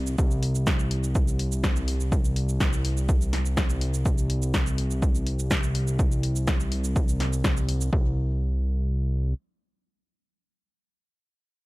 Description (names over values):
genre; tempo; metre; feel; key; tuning
melodic techno; 124 BPM; 4/4; straight; unclear; A4 = 440 Hz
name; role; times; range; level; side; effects
fat analog bass; bass; 0.0-9.3 s; C2; -25 LUFS; equal; sidechain pumping
punchy analog drum machine; drums; 0.1-7.9 s; hi-hat, shaker, snare drum; -31 LUFS; equal; sidechain pumping on perc, sidechain pumping on hats
electronic kick drum; drums; 0.2-8.0 s; none; -24 LUFS; equal; none
room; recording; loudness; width
little or no reverb; echo-heavy mix; -23 LUFS; side -20 dB against mid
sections
0.0-7.9 A section; 7.9-11.7 B section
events
drop 0.0-7.9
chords
none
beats
| 0.18 0.67 1.15 1.64 | 2.12 2.60 3.09 3.57 | 4.06 4.54 5.02 5.51 | 5.99 6.47 6.96 7.44 | 7.93 8.41 8.89